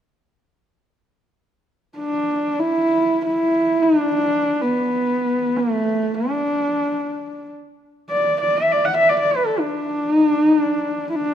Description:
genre	mongolian traditional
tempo	free time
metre	none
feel	none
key	unclear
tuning	A4 = 440 Hz
part	warm horsehead fiddle	melody	2.0-11.3 s	A3 to F#5	-17 LUFS	equal	none
room	moderate scoring stage reverb, RT60 1.8 s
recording	none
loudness	-17 LUFS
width	side -9 dB against mid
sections	1.7-11.3 A section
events	none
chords	none

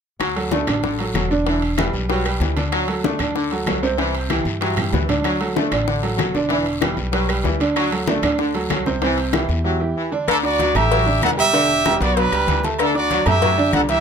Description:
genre	latin, salsa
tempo	190 BPM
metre	4/4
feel	straight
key	D major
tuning	A4 = 439 Hz
part	bright trombone section	second line	0.2-13.9 s	D3 to A3	-25 LUFS	left 3 dB	none
part	upright bass	bass	0.2-14.0 s	E1 to G2	-24 LUFS	equal	none
part	bongos and cowbell	percussion	0.2-14.0 s	none	-26 LUFS	left 10 dB	none
part	claves	percussion	0.2-13.9 s	none	-29 LUFS	left 5 dB	none
part	congas	percussion	0.2-14.0 s	none	-28 LUFS	left 2 dB	none
part	guiro	percussion	0.2-14.0 s	none	-34 LUFS	left 7 dB	none
part	timbales and agogo bells	percussion	0.2-14.0 s	none	-28 LUFS	right 5 dB	none
part	bright upright piano	accompaniment	0.4-14.0 s	C3 to D6	-22 LUFS	right 3 dB	none
part	bright trumpet section	melody	10.3-14.0 s	D4 to F#5	-18 LUFS	right 2 dB	none
room	light reverb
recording	close, detailed microphones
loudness	-17 LUFS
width	side -7 dB against mid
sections	0.2-10.3 A section; 10.3-14.0 B section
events	drum fill 4.3-5.2; break 9.7-10.3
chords	0.2 D; 1.5 Em7; 2.7 D; 4.0 C; 5.2 D; 6.5 Em7; 7.8 D; 9.0 C; 10.3 D; 11.5 Em7; 12.8 C

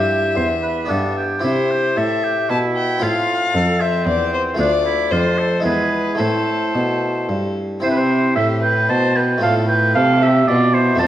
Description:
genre	classical, baroque-style sonata movement with continuo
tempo	113 BPM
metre	3/4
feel	straight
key	C major, A minor from 4.6 s, C major from 7.8 s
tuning	A4 = 440 Hz
part	warm violin	melody	0.0-11.1 s	E4 to A5	-22 LUFS	left 4 dB	none
part	clear oboe	second line	0.0-11.1 s	C4 to A5	-20 LUFS	right 3 dB	none
part	harpsichord	accompaniment	0.0-11.1 s	D2 to A4	-21 LUFS	equal	none
part	rich cello	bass	0.0-11.1 s	D2 to C3	-21 LUFS	right 1 dB	none
room	wet recital hall reverb, RT60 1.6 s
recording	worn, warbling old tape, cassette tape, warbly pitch drift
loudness	-15 LUFS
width	side -12 dB against mid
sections	0.0-7.8 A section; 7.8-11.1 A section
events	none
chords	0.0 C/G; 0.9 G; 1.4 C; 3.0 F; 4.6 Dm; 5.6 E; 6.2 Am; 7.8 C; 9.4 F/A

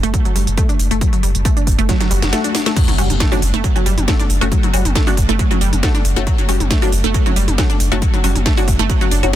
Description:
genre	driving peak-time techno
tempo	137 BPM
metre	4/4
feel	straight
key	F# phrygian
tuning	A4 = 441 Hz
part	wide unison pluck	riff	0.0-9.4 s	F#3 to D4	-20 LUFS	moving between left 5 dB and right 7 dB	tube saturation, auto-pan, sidechain pumping, tape echo
part	saturated sub bass	bass	0.0-9.3 s	F#1	-19 LUFS	equal	sidechain pumping, low-pass filter
part	techno drum kit	drums	0.0-9.4 s	crash cymbal, hi-hat, snare drum, toms	-22 LUFS	equal	none
part	electronic kick drum	drums	0.1-9.4 s	none	-16 LUFS	equal	none
part	swell and impact	sound effects	2.1-4.5 s	none	-26 LUFS	equal	none
part	filtered dub chord stab	stabs	3.0-9.4 s	F#3 to F#4	-23 LUFS	left 3 dB	phaser, sidechain pumping, ping-pong delay
room	digital ambience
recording	dense, heavily limited modern master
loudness	-13 LUFS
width	side -12 dB against mid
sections	0.0-2.8 A section; 2.8-9.4 B section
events	drum fill 1.9-2.8; swell 2.1-2.8; drop 2.8-9.4; impact 2.8-4.5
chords	0.0 F#m; 2.8 F#5

